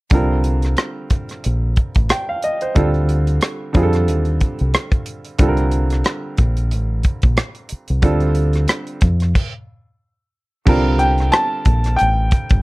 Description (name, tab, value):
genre	R&B, neo-soul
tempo	91 BPM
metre	4/4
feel	swing 55% on 16ths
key	unclear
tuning	A4 = 438 Hz
part	bright upright piano	accompaniment	0.1-12.6 s	D3 to G5	-22 LUFS	right 2 dB	none
part	deep dub fingered electric bass	bass	0.1-12.6 s	G1 to F2	-17 LUFS	equal	none
part	tight funk drum kit	drums	0.1-12.6 s	crash cymbal, hi-hat, kick drum, rim click	-17 LUFS	equal	none
part	clear baby grand piano	melody	11.0-12.6 s	G5 to A5	-18 LUFS	equal	none
room	little or no reverb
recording	worn, warbling old tape, cassette tape, warbly pitch drift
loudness	-15 LUFS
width	side -21 dB against mid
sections	0.1-10.7 A section; 10.7-12.6 B section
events	stop 9.3-10.7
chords	0.1 Csus2; 2.8 Dm7; 3.7 F9; 5.4 Csus2; 8.0 Dm7; 9.0 N.C.; 10.7 Csus2